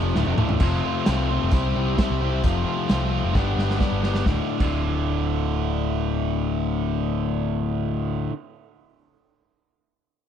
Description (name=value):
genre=classic rock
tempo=131 BPM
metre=4/4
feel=straight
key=D dorian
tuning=A4 = 440 Hz
part: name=tonewheel organ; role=sustained chords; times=0.0-0.6 s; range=D4 to A4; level=-37 LUFS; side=right 3 dB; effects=none
part: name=crunchy overdriven guitar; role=riff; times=0.0-8.3 s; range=D2 to C5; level=-26 LUFS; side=left 10 dB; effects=none
part: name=overdriven electric guitar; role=riff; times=0.0-8.3 s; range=D2 to C5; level=-28 LUFS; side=right 12 dB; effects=spring reverb
part: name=picked electric bass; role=bass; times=0.0-8.3 s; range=D1 to C2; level=-26 LUFS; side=equal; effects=none
part: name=raw garage drum kit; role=drums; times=0.2-4.7 s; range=crash cymbal, hi-hat, kick drum, snare drum, toms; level=-25 LUFS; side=equal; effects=none
room=small room ambience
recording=dry, close 1970s-style studio recording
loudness=-21 LUFS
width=side -9 dB against mid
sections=0.6-4.3 A section; 4.3-7.9 B section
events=drum fill 0.1-0.6, 3.3-4.3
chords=0.0 Dm; 0.6 F; 1.5 C; 2.4 F; 3.3 G; 4.3 D5